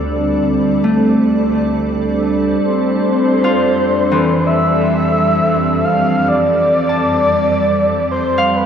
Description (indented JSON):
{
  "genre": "ambient",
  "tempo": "66 BPM",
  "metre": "4/4",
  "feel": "straight",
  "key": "F major",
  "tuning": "A4 = 440 Hz",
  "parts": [
    { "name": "glassy FM pad", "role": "sustained chords", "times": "0.0-8.7 s", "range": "G3 to D5", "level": "-16 LUFS", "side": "equal", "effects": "ensemble chorus, built-in reverb, shimmer reverb" },
    { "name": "dark chamber double bass section", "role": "bass", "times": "0.0-8.7 s", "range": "D2 to F2", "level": "-27 LUFS", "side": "equal", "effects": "none" },
    { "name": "Celtic harp", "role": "arpeggios", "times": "0.8-8.7 s", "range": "E3 to A5", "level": "-19 LUFS", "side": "equal", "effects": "shimmer reverb, diffuse ambient delay" },
    { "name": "breathy flute-like synth lead", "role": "melody", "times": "2.6-8.7 s", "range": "B4 to F5", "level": "-15 LUFS", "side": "equal", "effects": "lush chorus, shimmer reverb, diffuse ambient delay" }
  ],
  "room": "wet concert hall reverb, RT60 2.3 s",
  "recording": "none",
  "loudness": "-12 LUFS",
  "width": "side -8 dB against mid",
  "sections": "0.0-2.6 A section; 2.6-8.7 B section",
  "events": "fade-in on double bass section 2.6-8.7",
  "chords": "0.0 D7(no3); 2.6 Fmaj7"
}